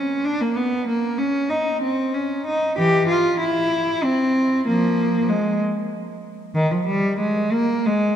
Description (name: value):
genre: classical, baroque-style suite movement for unaccompanied cello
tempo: 95 BPM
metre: 3/4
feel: rubato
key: F minor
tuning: A4 = 442 Hz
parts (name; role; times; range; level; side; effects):
- warm cello; solo; 0.0-8.2 s; Eb3 to G4; -19 LUFS; equal; none
room: wet church reverb, RT60 3.4 s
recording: dark, warm production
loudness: -18 LUFS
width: side -9 dB against mid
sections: 0.0-8.2 A section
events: none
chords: none